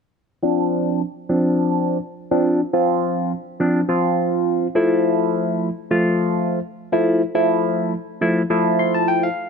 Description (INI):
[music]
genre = pop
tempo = 104 BPM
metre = 4/4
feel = straight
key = D minor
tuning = A4 = 439 Hz
[part]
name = barky tine electric piano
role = accompaniment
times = 0.4-9.5 s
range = F3 to C6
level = -17 LUFS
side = equal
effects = phaser, low-pass filter
[sound]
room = moderate plate reverb, RT60 2.6 s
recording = none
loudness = -17 LUFS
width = side -5 dB against mid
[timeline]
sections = 0.4-9.5 A section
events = filter sweep on tine electric piano 0.4-9.5; tine electric piano fill 8.5-9.5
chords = 0.4 Dm7; 4.8 Fmaj7